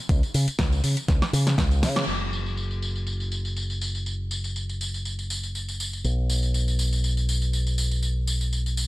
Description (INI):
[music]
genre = nu-disco, nu disco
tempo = 121 BPM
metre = 4/4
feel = swing 54% on 16ths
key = unclear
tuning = A4 = 438 Hz
[part]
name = fingered electric bass with an envelope filter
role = bass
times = 0.1-8.9 s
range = F#1 to C#3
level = -25 LUFS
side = equal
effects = tube saturation
[part]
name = electronic kick drum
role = drums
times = 0.1-1.7 s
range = none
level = -23 LUFS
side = equal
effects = overdrive
[part]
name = house drum kit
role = drums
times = 0.1-8.9 s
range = crash cymbal, hi-hat, snare drum, tambourine, woodblock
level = -29 LUFS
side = equal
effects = low-pass filter on hats, low-pass filter on perc, low-pass filter on snare, low-pass filter on cymbals
[sound]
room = little or no reverb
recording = none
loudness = -23 LUFS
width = side -18 dB against mid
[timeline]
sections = 0.0-2.1 A section; 2.1-8.9 B section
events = drum fill 1.1-2.1; band accent 2.0; filter sweep on drum 2.1-8.9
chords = none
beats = | 0.09 0.59 1.09 1.58 | 2.08 2.57 3.07 3.56 | 4.06 4.56 5.05 5.55 | 6.04 6.54 7.04 7.53 | 8.03 8.52